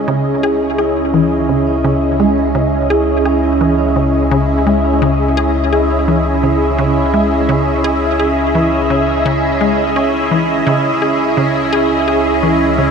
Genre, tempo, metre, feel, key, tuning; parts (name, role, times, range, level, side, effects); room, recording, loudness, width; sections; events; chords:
ambient, sequencer-driven space music; 85 BPM; 4/4; straight; C# minor; A4 = 441 Hz
lush unison pad; sustained chords; 0.0-12.9 s; C#4 to E5; -16 LUFS; equal; chorus, phaser
vibraphone with medium mallets; arpeggios; 0.0-12.9 s; C#4 to E4; -19 LUFS; moving between left 1 dB and right 7 dB; auto-pan, tape echo
warm sub bass; bass; 0.0-12.9 s; C#2; -21 LUFS; left 1 dB
bubbling stepped-filter texture; texture; 0.0-12.9 s; E4; -22 LUFS; right 2 dB; chorus, built-in reverb
resonant blip pluck; riff; 0.1-12.9 s; C#3 to G#4; -17 LUFS; left 1 dB; chorus, tape echo
wet huge ambient reverb, RT60 9.0 s; -12 LUFS; side -6 dB against mid
0.0-12.9 A section
0.0 C#m